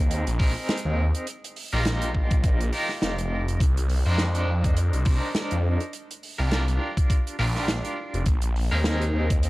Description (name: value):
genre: glitch hop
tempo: 103 BPM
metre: 4/4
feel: swing 57% on 16ths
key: C minor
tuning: A4 = 438 Hz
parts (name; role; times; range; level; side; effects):
- electric guitar at the edge of break-up; stabs; 0.0-9.5 s; C4 to C5; -30 LUFS; equal; tremolo, sidechain pumping, tape echo
- phased detuned saw bass; bass; 0.0-9.5 s; F1 to F2; -24 LUFS; equal; phaser
- open jazz drum kit; drums; 0.1-9.5 s; hi-hat, rim click, snare drum; -32 LUFS; right 1 dB; none
- electronic kick drum; drums; 0.4-9.4 s; none; -22 LUFS; equal; none
room: small room ambience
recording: dry, gritty hardware recording, transformer saturation, cassette tape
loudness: -22 LUFS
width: side -19 dB against mid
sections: 0.0-9.5 A section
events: none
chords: 0.0 Bb9sus4; 1.3 F9sus4; 3.6 Cm9; 5.9 Gm7; 8.3 Bb9sus4